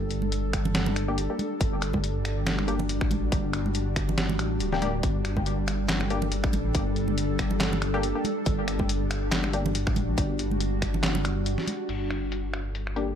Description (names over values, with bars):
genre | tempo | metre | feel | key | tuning
deep dubstep | 140 BPM | 4/4 | swing 56% on 16ths, half-time | G harmonic minor | A4 = 440 Hz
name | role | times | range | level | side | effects
bowed-like drone | sustained chords | 0.0-13.2 s | G3 to A4 | -30 LUFS | equal | built-in reverb
dark detuned saw bass | bass | 0.0-13.2 s | D1 to A1 | -29 LUFS | equal | none
trip hop sampler-style drum kit | drums | 0.1-13.1 s | crash cymbal, finger snaps, handclaps, hi-hat, snare drum | -31 LUFS | equal | low-pass filter on hats, low-pass filter on cymbals, low-pass filter on snare
congas | percussion | 0.2-11.8 s | none | -34 LUFS | right 3 dB | dub echo
electronic kick drum | drums | 0.5-10.9 s | none | -29 LUFS | equal | overdrive
filtered dub chord stab | stabs | 1.1-9.7, 13.0-13.1 s | Bb3 to G4 | -34 LUFS | left 4 dB | chorus, dub echo
room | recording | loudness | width
light reverb | lossy compression artefacts | -24 LUFS | side -8 dB against mid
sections
0.0-11.9 A section; 11.9-13.2 B section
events
none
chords
0.0 Gm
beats
0.32 0.75 1.18 | 1.61 2.04 2.46 2.89 | 3.32 3.75 4.18 4.61 | 5.04 5.46 5.89 6.32 | 6.75 7.18 7.61 8.04 | 8.46 8.89 9.32 9.75 | 10.18 10.61 11.04 11.46 | 11.89 12.32 12.75